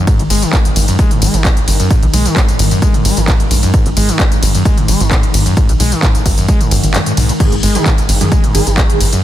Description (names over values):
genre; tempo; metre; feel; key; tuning
driving peak-time techno; 131 BPM; 4/4; straight; unclear; A4 = 440 Hz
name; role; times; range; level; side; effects
overdriven acid bass; riff; 0.0-9.2 s; G#1 to G#3; -17 LUFS; equal; distortion, wide subtle chorus, sidechain pumping, digital delay
deep dark ambient pad; drone; 0.0-9.2 s; G#2 to D#3; -22 LUFS; left 2 dB; chorus, built-in reverb, sidechain pumping
electronic kick drum; drums; 0.1-8.9 s; none; -12 LUFS; equal; small room ambience
techno drum kit; drums; 0.1-9.2 s; crash cymbal, handclaps, hi-hat, ride cymbal, tambourine; -18 LUFS; equal; overdrive, small room ambience
tight sequencer bass; bass; 0.2-9.1 s; G#1 to B1; -14 LUFS; equal; tube saturation, sidechain pumping
rave stab; stabs; 7.4-9.0 s; D#3 to G#4; -18 LUFS; right 2 dB; chorus, built-in reverb, sidechain pumping, digital delay
room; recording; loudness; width
digital ambience; dense, heavily limited modern master; -10 LUFS; side -12 dB against mid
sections
0.0-9.2 A section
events
kick drops out 6.9-7.4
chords
0.0 G#5